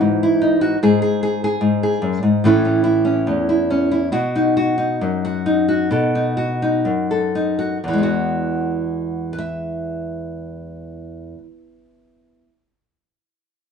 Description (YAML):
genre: folk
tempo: 60-75 BPM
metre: 4/4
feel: straight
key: E major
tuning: A4 = 440 Hz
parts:
  - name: nylon-string guitar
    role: accompaniment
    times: 0.0-12.5 s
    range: E2 to E5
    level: -17 LUFS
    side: left 1 dB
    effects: none
room: wet studio reverb, RT60 0.5 s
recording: band playing live in one room, nothing above 10.7 kHz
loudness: -16 LUFS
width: side -6 dB against mid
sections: 0.0-7.8 A section; 7.8-11.8 B section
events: slowing down 0.8-7.8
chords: 0.0 C#madd9 (rootless); 0.8 F#sus2; 2.4 A; 4.1 B; 7.8 Eadd9